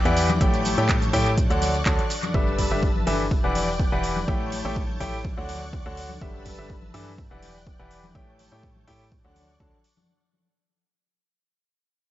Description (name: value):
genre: piano house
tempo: 124 BPM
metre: 4/4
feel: swing 53% on 16ths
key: A mixolydian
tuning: A4 = 440 Hz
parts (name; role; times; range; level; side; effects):
- analog string pad; sustained chords; 0.0-10.1 s; B4 to G6; -34 LUFS; left 1 dB; ensemble chorus, sidechain pumping
- organ-like FM bass; bass; 0.0-9.7 s; E1 to A2; -29 LUFS; equal; sidechain pumping
- clear concert grand piano; riff; 0.1-9.8 s; D3 to A5; -26 LUFS; left 1 dB; sidechain pumping, analog delay
- house drum kit; drums; 0.1-9.9 s; handclaps, hi-hat, shaker; -32 LUFS; right 2 dB; analog delay
- tambourine and congas; percussion; 0.2-10.1 s; none; -33 LUFS; left 3 dB; analog delay
- electronic kick drum; drums; 0.4-9.7 s; none; -25 LUFS; equal; none
room: light reverb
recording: echo-heavy mix, nothing above 7.7 kHz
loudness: -21 LUFS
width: side -14 dB against mid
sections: 0.0-10.1 A section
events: fade-out 0.0-10.1; filter sweep on FM bass 0.0-10.1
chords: 0.4 A7; 1.4 Dmaj7; 2.3 G69; 3.3 Em9; 4.3 A7; 5.2 Dmaj7; 6.2 G69; 7.2 Em9; 8.2 A7; 9.1 Dmaj7